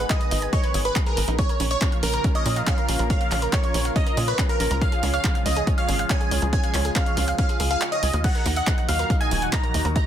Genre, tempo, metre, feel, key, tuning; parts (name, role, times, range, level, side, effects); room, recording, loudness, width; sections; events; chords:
uplifting trance; 140 BPM; 4/4; straight; A4 = 441 Hz
lush unison pad; sustained chords; 0.0-10.1 s; Bb2 to Cb5; -31 LUFS; equal; chorus, phaser, sidechain pumping
analog pluck; arpeggios; 0.0-10.0 s; Db4 to Db6; -31 LUFS; right 5 dB; chorus, sidechain pumping, tape echo
tight sequencer bass; bass; 0.0-10.0 s; Eb1 to Bb2; -25 LUFS; equal; sidechain pumping
supersaw stab; melody; 0.1-10.1 s; Bb4 to Bb5; -27 LUFS; equal; cassette tape, sidechain pumping, ping-pong delay
electronic kick drum; drums; 0.1-10.0 s; -24 LUFS; equal
punchy analog drum machine; drums; 0.1-10.0 s; crash cymbal, handclaps, hi-hat; -29 LUFS; equal
digital ambience; dense, heavily limited modern master; -20 LUFS; side -10 dB against mid
0.0-10.1 A section
kick drops out 7.8-8.2
0.0 Abm; 1.4 Bbm; 4.8 Db; 8.2 Ebm